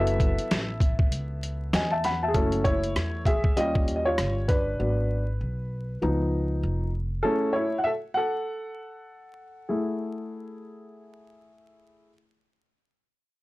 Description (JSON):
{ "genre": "hip hop, jazz-hop", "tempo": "98 BPM", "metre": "4/4", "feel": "swing 59% on 16ths", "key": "F# dorian", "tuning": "A4 = 441 Hz", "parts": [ { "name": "dark grand piano", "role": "accompaniment", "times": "0.0-12.1 s", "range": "E#3 to B5", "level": "-27 LUFS", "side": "equal", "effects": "none" }, { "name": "upright bass", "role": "bass", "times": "0.0-7.2 s", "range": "E#1 to E2", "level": "-29 LUFS", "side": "equal", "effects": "tube saturation" }, { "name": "boom bap sampler-style drum kit", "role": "drums", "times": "0.1-4.7 s", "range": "hi-hat, kick drum, rim click, snare drum", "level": "-24 LUFS", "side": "equal", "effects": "vintage 12-bit sampler grit" } ], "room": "light reverb", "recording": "dry, gritty hardware recording, vinyl crackle", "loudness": "-24 LUFS", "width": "side -19 dB against mid", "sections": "0.0-2.3 A section; 2.3-12.1 B section", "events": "break 1.1-2.3; grand piano solo 2.3-12.1", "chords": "0.0 F#m7; 3.6 D#7; 4.8 G#m7b5; 6.0 C#7; 7.2 F#m7" }